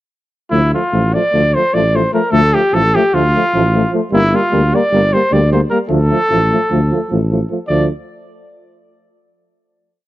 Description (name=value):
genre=balkan folk, Balkan brass band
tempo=302 BPM (eighths)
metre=9/8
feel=straight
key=D minor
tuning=A4 = 442 Hz
part: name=mellow trumpet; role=melody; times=0.5-7.9 s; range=E4 to D5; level=-15 LUFS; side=equal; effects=none
part: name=clear euphonium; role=accompaniment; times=0.5-7.9 s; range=A3 to Bb3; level=-20 LUFS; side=left 5 dB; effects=none
part: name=warm euphonium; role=accompaniment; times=0.5-7.9 s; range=F3 to G3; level=-20 LUFS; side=right 4 dB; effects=none
part: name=mellow tuba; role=bass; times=0.5-7.9 s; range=G1 to D2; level=-16 LUFS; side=equal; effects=none
room=studio reverb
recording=dry, close 1970s-style studio recording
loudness=-12 LUFS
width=side -15 dB against mid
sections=0.5-7.7 A section; 7.7-9.5 final chord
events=none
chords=0.5 Dm; 4.1 Gm; 5.9 Dm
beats=| 0.51 0.71 0.91 1.11 1.31 1.51 1.71 1.92 2.12 | 2.31 2.52 2.71 2.92 3.12 3.31 3.51 3.71 3.91 | 4.11 4.31 4.51 4.71 4.91 5.11 5.30 5.50 5.70 | 5.90 6.10 6.30 6.50 6.69 6.89 7.09 7.29 7.49 | 7.68 7.88